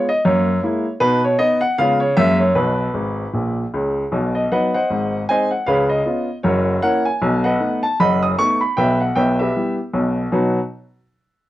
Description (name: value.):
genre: jazz, stride piano.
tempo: 154 BPM.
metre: 4/4.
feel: swing 59% on 8ths.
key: B major.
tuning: A4 = 441 Hz.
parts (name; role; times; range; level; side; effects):
warm upright piano; solo; 0.0-10.6 s; F#1 to D#6; -16 LUFS; equal; none.
room: moderate studio reverb, RT60 0.6 s.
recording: worn, warbling old tape, cassette tape, warbly pitch drift.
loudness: -16 LUFS.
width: side -15 dB against mid.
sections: 0.0-4.1 A section; 4.1-10.3 B section; 10.3-11.5 C section.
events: upright piano fill 3.0-4.1.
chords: 0.2 F#9; 1.0 B; 1.8 C#7; 2.2 F#9; 2.6 G#madd9; 4.1 B; 4.9 G#7; 5.7 C#7; 6.4 F#7; 7.2 B7; 8.8 Em/B; 10.3 B.